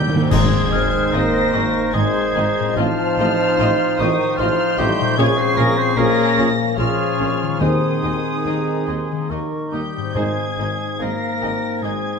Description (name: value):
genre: classical, slow romantic movement for symphony orchestra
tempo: 73 BPM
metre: 3/4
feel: uneven beats, rubato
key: Ab major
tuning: A4 = 437 Hz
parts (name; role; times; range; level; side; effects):
- muted studio violin section; melody; 0.0-12.2 s; Eb6 to C7; -26 LUFS; left 2 dB; none
- mellow oboe; second line; 0.0-12.2 s; Eb4 to C5; -28 LUFS; right 2 dB; none
- dark bassoon; accompaniment; 0.0-12.2 s; Ab3 to C4; -26 LUFS; right 4 dB; none
- mellow French horn section; sustained chords; 0.0-12.2 s; Eb3 to C4; -24 LUFS; left 6 dB; none
- concert harp; arpeggios; 0.0-12.2 s; Ab2 to Eb5; -26 LUFS; left 11 dB; none
- muted chamber double bass section; bass; 0.0-11.9 s; Ab1 to Eb2; -28 LUFS; right 4 dB; none
- warm tuba; bass; 0.0-12.0 s; Ab1 to Eb2; -30 LUFS; right 6 dB; none
- timpani; percussion; 0.0-1.5, 7.6-11.4 s; Ab2 to Eb3; -22 LUFS; equal; none
- dark clarinet; second line; 0.3-12.2 s; C4 to Eb4; -31 LUFS; left 4 dB; none
- hollow concert flute; second line; 0.3-12.2 s; F5 to F6; -29 LUFS; left 2 dB; none
- muted studio violin section; second line; 0.3-11.9 s; F4 to Eb5; -32 LUFS; left 3 dB; none
- muted symphonic viola section; accompaniment; 0.3-11.9 s; Bb3 to F4; -28 LUFS; equal; none
- mellow trombone section; sustained chords; 0.3-10.5 s; Eb3 to Eb4; -26 LUFS; right 4 dB; none
- clear trumpet; stabs; 0.3-10.5 s; Ab4 to C5; -28 LUFS; right 4 dB; none
- muted studio cello section; bass; 0.3-11.9 s; Eb2 to Bb2; -31 LUFS; right 2 dB; none
- clash cymbals and concert bass drum; percussion; 0.3-1.9 s; none; -27 LUFS; equal; none
room: moderate scoring stage reverb, RT60 1.6 s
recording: close, detailed microphones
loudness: -16 LUFS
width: side -5 dB against mid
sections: 0.3-12.2 A section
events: timpani fill 0.0-0.3; band accent 0.3-1.1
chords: 0.3 Ab; 2.8 F7/A; 5.2 Bbm7; 7.6 Ab/Eb; 9.3 Eb; 10.2 Ab